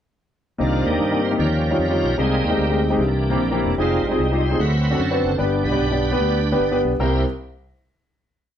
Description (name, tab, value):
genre	uptempo gospel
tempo	150 BPM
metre	4/4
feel	swing 63% on 8ths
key	C minor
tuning	A4 = 440 Hz
part	warm concert grand piano	accompaniment	0.6-7.2 s	C2 to D5	-21 LUFS	left 1 dB	none
part	bright tonewheel organ	sustained chords	0.6-7.2 s	Eb3 to C5	-24 LUFS	right 2 dB	slow rotary speaker, overdrive, chorus vibrato
part	mellow French horn section	sustained chords	0.6-7.2 s	Eb3 to D5	-33 LUFS	right 2 dB	none
part	fingered electric bass	bass	0.6-7.2 s	E1 to G2	-23 LUFS	equal	none
room	moderate studio reverb, RT60 0.8 s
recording	band playing live in one room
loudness	-18 LUFS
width	side -9 dB against mid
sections	0.6-7.0 breakdown; 7.0-8.6 final chord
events	tonewheel organ solo 0.6-7.0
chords	0.6 Cm7; 1.4 Eb9; 2.2 Abmaj7/C; 3.0 C7; 3.8 Fm7; 4.6 D7; 5.4 G; 7.0 C7